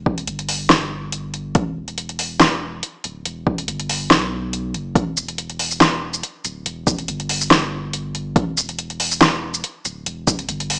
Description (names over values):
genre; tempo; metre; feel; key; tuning
deep dubstep; 141 BPM; 4/4; swing 54% on 16ths, half-time; E minor; A4 = 442 Hz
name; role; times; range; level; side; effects
soft dub sub bass; bass; 0.0-10.8 s; D1 to B1; -29 LUFS; equal; tube saturation
electronic kick drum; drums; 0.1-10.4 s; none; -19 LUFS; equal; overdrive, small room ambience
deep house drum kit; drums; 0.2-10.8 s; hi-hat, shaker, snare drum; -17 LUFS; equal; overdrive, small room ambience
room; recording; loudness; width
light reverb, digital ambience; dry, gritty hardware recording, small speaker sound; -18 LUFS; side -27 dB against mid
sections
0.0-10.8 A section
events
none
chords
none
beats
0.28 0.70 1.13 | 1.55 1.98 2.40 2.83 | 3.25 3.68 4.11 4.53 | 4.96 5.38 5.81 6.23 | 6.66 7.08 7.51 7.93 | 8.36 8.79 9.21 9.64 | 10.06 10.49